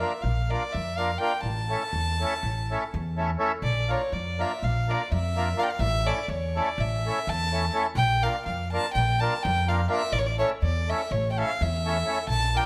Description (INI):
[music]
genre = balkan folk, Balkan wedding band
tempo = 249 BPM (eighths)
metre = 9/8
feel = straight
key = A phrygian dominant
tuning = A4 = 440 Hz
[part]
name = warm violin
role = melody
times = 0.0-12.7 s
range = C#5 to A5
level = -31 LUFS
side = equal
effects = none
[part]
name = accordion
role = accompaniment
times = 0.0-12.7 s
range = A3 to Bb4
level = -32 LUFS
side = equal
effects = none
[part]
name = upright bass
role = bass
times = 0.0-12.6 s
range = A1 to F2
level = -30 LUFS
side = equal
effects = none
[sound]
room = moderate recital hall reverb, RT60 1.4 s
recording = none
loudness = -27 LUFS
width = mono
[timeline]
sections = 0.0-3.6 A section; 3.6-12.7 A section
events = none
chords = 0.0 Bb; 1.4 A; 3.6 Bb; 5.8 A; 8.0 Bb; 10.1 A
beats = 0.19 0.44 0.69 0.93 1.18 | 1.42 1.67 1.91 2.16 2.40 2.64 2.89 3.13 3.38 | 3.62 3.86 4.10 4.35 4.59 4.83 5.07 5.31 5.55 | 5.80 6.04 6.28 6.52 6.76 7.00 7.24 7.48 7.72 | 7.96 8.20 8.44 8.68 8.92 9.16 9.40 9.64 9.88 | 10.12 10.36 10.60 10.84 11.08 11.32 11.56 11.80 12.04 | 12.28 12.52